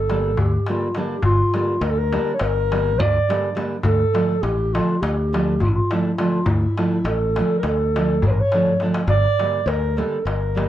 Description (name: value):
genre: balkan folk, Balkan wedding band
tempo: 206 BPM (eighths)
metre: 9/8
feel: straight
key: G dorian sharp4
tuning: A4 = 442 Hz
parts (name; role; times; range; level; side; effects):
- dark clarinet; melody; 0.0-10.7 s; E4 to D5; -22 LUFS; right 1 dB; none
- modern bright fingered electric bass; bass; 0.0-10.7 s; G1 to D2; -22 LUFS; equal; none
- nylon-string guitar; accompaniment; 0.1-10.7 s; D3 to D4; -23 LUFS; right 2 dB; none
- darbuka; percussion; 0.1-10.7 s; none; -24 LUFS; left 1 dB; none
room: moderate small room reverb, RT60 0.5 s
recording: worn, warbling old tape, cassette tape, warbly pitch drift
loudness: -18 LUFS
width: side -12 dB against mid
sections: 0.0-10.7 A section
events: drum fill 8.6-9.1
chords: 0.0 Gm; 3.8 Dm; 9.1 Gm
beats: 0.06 0.35 0.64 0.93 | 1.22 1.51 1.80 2.09 2.38 2.67 2.96 3.25 3.54 | 3.83 4.12 4.42 4.71 5.00 5.29 5.58 5.87 6.16 | 6.45 6.74 7.03 7.33 7.62 7.91 8.20 8.49 8.78 | 9.07 9.36 9.65 9.94 10.23 10.52